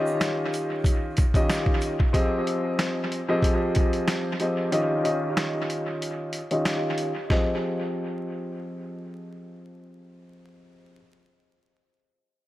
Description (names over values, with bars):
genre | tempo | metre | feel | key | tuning
hip hop, boom-bap hip-hop | 93 BPM | 4/4 | swing 56% on 16ths | F minor | A4 = 441 Hz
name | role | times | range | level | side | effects
dark grand piano | accompaniment | 0.0-11.0 s | Eb3 to Eb5 | -26 LUFS | equal | cassette tape, high-pass filter, low-pass filter, dub echo
tube shaker | percussion | 0.1-2.0 s | none | -48 LUFS | right 6 dB | none
boom bap sampler-style drum kit | drums | 0.2-7.5 s | hi-hat, kick drum, snare drum | -26 LUFS | equal | dub echo
room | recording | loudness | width
light reverb, studio ambience | echo-heavy mix, vinyl crackle | -23 LUFS | side -15 dB against mid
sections
0.0-2.1 A section; 2.1-7.3 B section; 7.3-9.9 C section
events
filter sweep on grand piano 2.1-7.3; break 4.7-7.3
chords
0.0 Eb7; 2.1 Fm7; 4.7 Eb7; 7.3 Fm7